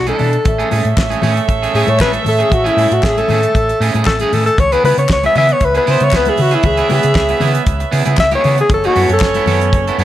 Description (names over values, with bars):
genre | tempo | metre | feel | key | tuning
disco | 116 BPM | 4/4 | straight | A major | A4 = 440 Hz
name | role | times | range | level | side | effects
warm alto saxophone | melody | 0.0-9.8 s | E4 to E5 | -15 LUFS | left 2 dB | none
warm horn section | stabs | 0.0-10.0 s | C#4 to E5 | -19 LUFS | right 4 dB | analog delay
hollow-body short-scale fingered electric bass | bass | 0.0-10.0 s | F#1 to C#3 | -18 LUFS | equal | none
electric guitar at the edge of break-up | accompaniment | 0.1-10.0 s | A3 to A4 | -20 LUFS | right 5 dB | spring reverb
damped 70s drum kit | drums | 0.1-10.0 s | hi-hat, kick drum, snare drum | -18 LUFS | equal | none
congas | percussion | 0.1-10.0 s | none | -26 LUFS | left 5 dB | none
group handclap | percussion | 1.0-9.3 s | none | -28 LUFS | left 8 dB | none
room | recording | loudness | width
light reverb, studio reverb | none | -11 LUFS | side -13 dB against mid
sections
0.0-10.0 A section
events
alto saxophone solo 0.0-10.0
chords
0.5 Amaj7; 4.6 C#m7; 8.7 F#m7